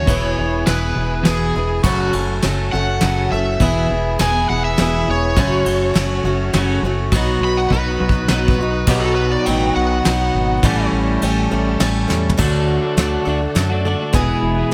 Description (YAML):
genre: folk rock and heartland rock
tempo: 102 BPM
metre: 3/4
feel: straight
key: E major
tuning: A4 = 440 Hz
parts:
  - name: overdriven slide guitar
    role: second line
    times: 0.0-10.9 s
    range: F#4 to B5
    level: -25 LUFS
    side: equal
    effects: tape echo
  - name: picked swing-style acoustic guitar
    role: accompaniment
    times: 0.0-14.7 s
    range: F#2 to A4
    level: -24 LUFS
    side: equal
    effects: plate reverb
  - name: clear symphonic string section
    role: sustained chords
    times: 0.0-14.7 s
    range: B3 to B4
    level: -34 LUFS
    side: equal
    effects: none
  - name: twelve-string electric guitar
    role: riff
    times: 0.0-14.7 s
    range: E2 to G#4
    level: -24 LUFS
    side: equal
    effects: vibrato effect
  - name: deep dub fingered electric bass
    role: bass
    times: 0.0-14.7 s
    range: E1 to F#2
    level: -24 LUFS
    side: equal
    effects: none
  - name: soft brush drum kit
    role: drums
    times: 0.1-14.3 s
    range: crash cymbal, hi-hat, kick drum, ride cymbal, snare drum, toms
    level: -24 LUFS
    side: equal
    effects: none
room: light reverb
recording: none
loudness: -17 LUFS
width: mono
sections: 0.0-8.9 A section; 8.9-12.4 B section; 12.4-14.7 C section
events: electric slide guitar solo 0.0-8.9; drum fill 7.7-8.9, 12.1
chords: 0.1 E; 1.8 F#m; 3.6 E; 5.4 F#m; 7.1 B; 10.6 A7; 12.4 D; 14.1 E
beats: | 0.08 0.67 1.25 | 1.84 2.43 3.02 | 3.61 4.19 4.78 | 5.37 5.95 6.54 | 7.12 7.71 8.29 | 8.88 9.46 10.05 | 10.63 11.22 11.80 | 12.38 12.97 13.55 | 14.14 14.72